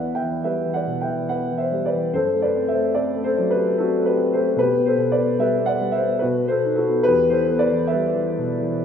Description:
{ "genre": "classical, lyrical solo piano", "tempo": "64-76 BPM", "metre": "3/4", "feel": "rubato", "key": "E minor", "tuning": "A4 = 440 Hz", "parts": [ { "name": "dark grand piano", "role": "solo", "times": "0.0-8.8 s", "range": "E2 to G5", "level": "-18 LUFS", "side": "left 1 dB", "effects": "none" } ], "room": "wet recital hall reverb, RT60 1.4 s", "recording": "recorded in a church or concert hall", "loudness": "-18 LUFS", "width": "side -8 dB against mid", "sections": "0.0-8.8 A section", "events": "none", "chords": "0.0 Em; 2.1 F#dim; 4.6 Am11/B; 6.2 B; 7.1 Em" }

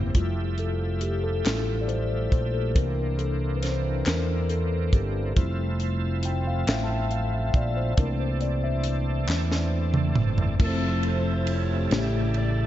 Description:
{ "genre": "slow gospel", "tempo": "46 BPM (dotted quarters)", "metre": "6/8", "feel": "straight", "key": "F major", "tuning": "A4 = 442 Hz", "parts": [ { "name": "mellow saxophone section", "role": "melody", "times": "0.0-0.1, 10.6-12.7 s", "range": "A3 to D5", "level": "-34 LUFS", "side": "left 1 dB", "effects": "diffuse ambient delay" }, { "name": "mellow tine electric piano", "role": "accompaniment", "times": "0.0-12.7 s", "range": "A2 to A5", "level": "-30 LUFS", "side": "left 3 dB", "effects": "medium stereo tremolo" }, { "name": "bright tonewheel organ", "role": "sustained chords", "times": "0.0-12.7 s", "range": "C3 to E5", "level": "-34 LUFS", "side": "right 4 dB", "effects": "slow rotary speaker, overdrive, chorus vibrato" }, { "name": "fingered electric bass", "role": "bass", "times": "0.0-12.7 s", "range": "F1 to E2", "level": "-26 LUFS", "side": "equal", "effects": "none" }, { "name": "tight funk drum kit", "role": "drums", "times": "0.1-12.5 s", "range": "crash cymbal, hi-hat, kick drum, ride cymbal, snare drum, toms", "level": "-26 LUFS", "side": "equal", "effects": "none" }, { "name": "group handclap", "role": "percussion", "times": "1.5-9.7 s", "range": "none", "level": "-37 LUFS", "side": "left 2 dB", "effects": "none" } ], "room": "moderate lush hall reverb, RT60 2.1 s", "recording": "dreamy mix soaked in reverb, nothing above 7.7 kHz", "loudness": "-23 LUFS", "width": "side -13 dB against mid", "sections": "0.2-10.6 A section; 10.6-12.7 B section", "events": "drum fill 0.0, 9.3-10.6; tine electric piano solo 0.2-10.6", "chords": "0.2 Fmaj9; 2.8 C9; 5.4 Fmaj7; 8.0 C13; 10.6 Fmaj7; 11.9 A7" }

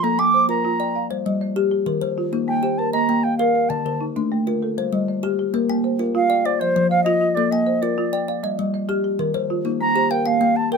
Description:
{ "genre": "southern african traditional, mbira-style interlocking cycle", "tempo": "131 BPM (dotted quarters)", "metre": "12/8", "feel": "straight", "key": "Bb major", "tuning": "A4 = 443 Hz", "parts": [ { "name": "wooden flute", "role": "melody", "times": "0.0-10.8 s", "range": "C5 to D6", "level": "-20 LUFS", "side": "right 2 dB", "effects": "none" }, { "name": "folk marimba with medium mallets", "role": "arpeggios", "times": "0.0-10.8 s", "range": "D3 to G5", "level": "-23 LUFS", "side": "right 2 dB", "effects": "none" }, { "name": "kalimba", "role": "arpeggios", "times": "0.0-10.8 s", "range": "D3 to G5", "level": "-23 LUFS", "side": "left 5 dB", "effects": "none" } ], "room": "moderate small room ambience, RT60 0.5 s", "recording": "minimal, uncompressed stereo recording", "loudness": "-18 LUFS", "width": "side -5 dB against mid", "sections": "0.0-5.5 A section; 5.5-10.8 B section", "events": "none", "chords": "0.0 Bb; 1.0 G5; 1.9 Eb; 2.8 Bb5; 3.7 Dm; 4.6 Gm; 5.5 Bb; 6.5 F5; 7.4 Bb; 8.3 G5; 9.2 Eb; 10.1 Bb5" }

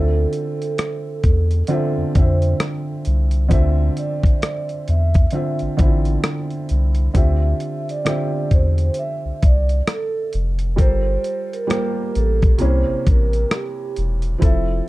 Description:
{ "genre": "lo-fi hip hop", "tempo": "66 BPM", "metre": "4/4", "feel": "swing 60% on 16ths", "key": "D minor", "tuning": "A4 = 442 Hz", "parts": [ { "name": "vibraphone with soft mallets", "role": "melody", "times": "0.0-14.9 s", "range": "G4 to E5", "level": "-26 LUFS", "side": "right 3 dB", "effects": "plate reverb" }, { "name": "felt-muted upright piano", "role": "accompaniment", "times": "0.0-14.9 s", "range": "C3 to E5", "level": "-24 LUFS", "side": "right 1 dB", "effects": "none" }, { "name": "soft dub sub bass", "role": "bass", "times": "0.0-14.8 s", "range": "E1 to F2", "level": "-18 LUFS", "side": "equal", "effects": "none" }, { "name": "dusty soul sampler-style drum kit", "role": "drums", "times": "0.3-14.7 s", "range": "hi-hat, kick drum, rim click", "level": "-17 LUFS", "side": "equal", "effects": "none" } ], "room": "light reverb", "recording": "dark, warm production", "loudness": "-16 LUFS", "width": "side -18 dB against mid", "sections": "0.0-7.2 A section; 7.2-14.9 B section", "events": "none", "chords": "0.0 Dm9; 7.2 Dm11; 10.8 Gm11; 12.6 C7b9" }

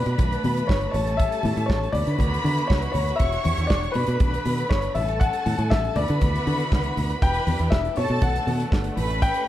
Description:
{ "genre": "disco", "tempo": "120 BPM", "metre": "4/4", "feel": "straight", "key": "E dorian", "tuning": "A4 = 440 Hz", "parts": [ { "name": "warm grand piano", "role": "melody", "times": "0.0-9.5 s", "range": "B4 to G5", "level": "-28 LUFS", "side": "left 4 dB", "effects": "none" }, { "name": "warm studio violin section", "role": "second line", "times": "0.0-9.5 s", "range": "A4 to C#6", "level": "-29 LUFS", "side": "right 1 dB", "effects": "none" }, { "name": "clear symphonic string section", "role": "sustained chords", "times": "0.0-9.5 s", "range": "D3 to G4", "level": "-34 LUFS", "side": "right 1 dB", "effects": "none" }, { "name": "fingered electric bass", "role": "bass", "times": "0.1-9.3 s", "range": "E1 to D3", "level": "-25 LUFS", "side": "equal", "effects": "none" }, { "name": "modern studio drum kit", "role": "drums", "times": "0.1-9.5 s", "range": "hi-hat, kick drum, snare drum", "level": "-24 LUFS", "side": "right 1 dB", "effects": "none" }, { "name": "congas", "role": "percussion", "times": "0.2-9.1 s", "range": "none", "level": "-32 LUFS", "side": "left 3 dB", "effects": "none" } ], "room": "light reverb, small room ambience", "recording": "none", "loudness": "-20 LUFS", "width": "side -13 dB against mid", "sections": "0.0-7.2 A section; 7.2-9.5 B section", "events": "none", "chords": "0.0 Bm7; 0.9 A7; 2.0 D69; 3.2 Em9; 4.0 Bm7; 5.0 A7; 6.0 D69; 7.2 Em7; 8.0 Bm7; 9.0 A9" }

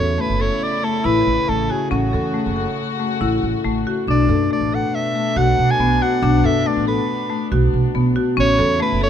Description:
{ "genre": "contemporary instrumental, chamber music in an uneven meter", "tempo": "139 BPM", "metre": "5/4", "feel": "straight", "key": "B minor", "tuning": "A4 = 442 Hz", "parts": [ { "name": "clear soprano saxophone", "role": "melody", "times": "0.0-9.1 s", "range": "F#4 to G#5", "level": "-21 LUFS", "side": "right 2 dB", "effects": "none" }, { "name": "dark studio string section", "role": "sustained chords", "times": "0.0-9.1 s", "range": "B2 to F#4", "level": "-26 LUFS", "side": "left 2 dB", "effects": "none" }, { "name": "marimba with medium hard mallets", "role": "arpeggios", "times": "0.0-9.1 s", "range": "A3 to A4", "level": "-20 LUFS", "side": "left 4 dB", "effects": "none" }, { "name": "upright bass", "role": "bass", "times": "0.0-9.1 s", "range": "F#1 to F#2", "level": "-20 LUFS", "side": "right 3 dB", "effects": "none" } ], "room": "light reverb", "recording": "close, detailed microphones", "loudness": "-16 LUFS", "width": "side -9 dB against mid", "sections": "0.0-9.1 A section", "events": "none", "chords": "0.0 A; 4.1 Bm7; 8.4 A" }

